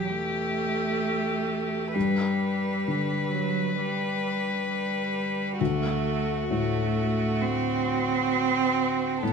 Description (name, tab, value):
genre	neoclassical piano and strings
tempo	66 BPM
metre	4/4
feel	rubato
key	unclear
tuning	A4 = 440 Hz
part	rich violin	melody	0.0-9.3 s	F#4 to B4	-30 LUFS	left 3 dB	none
part	rich cello	second line	0.0-9.3 s	F#3 to C4	-27 LUFS	right 4 dB	none
part	felt-muted upright piano	accompaniment	0.0-9.3 s	D2 to D3	-30 LUFS	left 4 dB	none
room	wet large studio reverb, RT60 1.3 s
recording	band playing live in one room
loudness	-24 LUFS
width	side -5 dB against mid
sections	0.0-9.3 A section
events	none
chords	0.0 Em; 1.9 G; 5.6 D